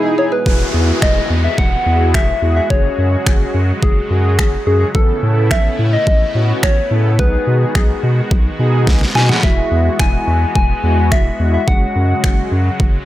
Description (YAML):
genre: dance-pop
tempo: 107 BPM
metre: 4/4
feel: straight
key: E major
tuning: A4 = 441 Hz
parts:
  - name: mellow synth brass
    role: accompaniment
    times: 0.0-12.5 s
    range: G#3 to A4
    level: -22 LUFS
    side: equal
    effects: chorus, sidechain pumping
  - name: filtered supersaw swell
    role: sustained chords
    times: 0.0-13.1 s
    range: B2 to F#4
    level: -25 LUFS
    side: equal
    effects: sidechain pumping
  - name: soft struck synth lead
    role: melody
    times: 0.2-13.1 s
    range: G#4 to G#5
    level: -20 LUFS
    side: left 2 dB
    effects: chorus, tape echo
  - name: saturated sub bass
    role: bass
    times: 0.5-13.0 s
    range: E1 to B2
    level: -16 LUFS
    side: equal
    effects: sidechain pumping
  - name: pop drum kit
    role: drums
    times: 0.5-12.9 s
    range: finger snaps, kick drum, snare drum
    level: -15 LUFS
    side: equal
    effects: overdrive
  - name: downlifter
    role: sound effects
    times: 0.5-4.9 s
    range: none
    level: -26 LUFS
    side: equal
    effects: none
room: little or no reverb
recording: none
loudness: -12 LUFS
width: side -14 dB against mid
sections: 0.5-13.1 A section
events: break 0.0-0.5; drum fill 8.9-9.4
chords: 0.5 Eadd9; 2.7 F#sus2; 4.9 Aadd9; 7.2 B6; 9.4 Eadd9; 11.7 F#sus2